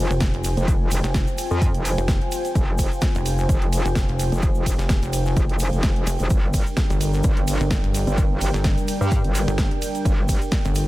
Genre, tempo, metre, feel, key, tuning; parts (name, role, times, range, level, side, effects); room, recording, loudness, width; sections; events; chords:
bass house; 128 BPM; 4/4; swing 55% on 16ths; F dorian; A4 = 442 Hz
dark analog pad; sustained chords; 0.0-10.9 s; G3 to Ab5; -28 LUFS; equal; chorus, sidechain pumping
metallic wobble bass; bass; 0.0-10.4 s; F1 to G2; -23 LUFS; equal; chorus, sidechain pumping
pulsing pluck wobble bass; bass; 0.1-10.9 s; F1 to G1; -22 LUFS; equal; chorus, sidechain pumping
egg shaker; percussion; 0.1-10.9 s; -36 LUFS; left 3 dB
electronic kick drum; drums; 0.2-10.6 s; -22 LUFS; equal; overdrive
house drum kit; drums; 0.2-10.9 s; hi-hat, ride cymbal, snare drum; -30 LUFS; right 1 dB
little or no reverb; -19 LUFS; side -17 dB against mid
0.0-10.9 A section
0.0 Fmadd9; 6.3 Gm